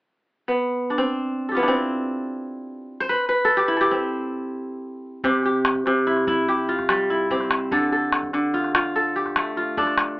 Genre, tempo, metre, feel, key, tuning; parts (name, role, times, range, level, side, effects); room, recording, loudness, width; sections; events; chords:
west african traditional, West African string and xylophone music; 97 BPM (dotted quarters); 12/8; straight; C major; A4 = 440 Hz
kora; arpeggios; 0.5-10.2 s; C3 to C5; -20 LUFS; equal
calabash; percussion; 5.2-10.1 s; -23 LUFS; left 1 dB
light reverb; AM radio sound; -20 LUFS; side -21 dB against mid
0.3-5.2 A section; 5.2-10.2 B section
kora solo 0.3-5.2
0.3 C; 7.7 Dm